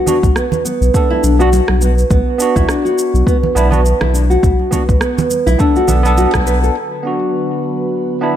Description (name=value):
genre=organic downtempo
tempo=103 BPM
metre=4/4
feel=swing 57% on 16ths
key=B minor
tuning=A4 = 439 Hz
part: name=nylon-string guitar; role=arpeggios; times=0.0-6.7 s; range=B3 to B4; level=-16 LUFS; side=equal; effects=ping-pong delay
part: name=barky tine electric piano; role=accompaniment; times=0.1-8.4 s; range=B3 to A4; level=-19 LUFS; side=right 2 dB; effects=lush chorus, sidechain pumping, ping-pong delay
part: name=electronic shaker and rim click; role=drums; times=0.1-6.7 s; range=none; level=-24 LUFS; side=right 2 dB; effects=low-pass filter on perc, low-pass filter on snare
part: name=congas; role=percussion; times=0.1-6.4 s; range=none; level=-23 LUFS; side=right 4 dB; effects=none
part: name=warm sub bass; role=bass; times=0.2-6.7 s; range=B1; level=-13 LUFS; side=equal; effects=tube saturation
part: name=electronic kick drum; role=drums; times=0.2-6.4 s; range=none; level=-15 LUFS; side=equal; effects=overdrive
part: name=airy breathy pad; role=sustained chords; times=6.8-8.4 s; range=D3 to B4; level=-20 LUFS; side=left 1 dB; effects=chorus, sidechain pumping
room=light reverb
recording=none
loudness=-11 LUFS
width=side -10 dB against mid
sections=0.0-6.8 A section; 6.8-8.4 B section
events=band accent 6.3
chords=0.0 Bm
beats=0.36 0.94 1.52 | 2.10 2.69 3.27 3.85 | 4.43 5.02 5.60 6.18 | 6.76 7.35 7.93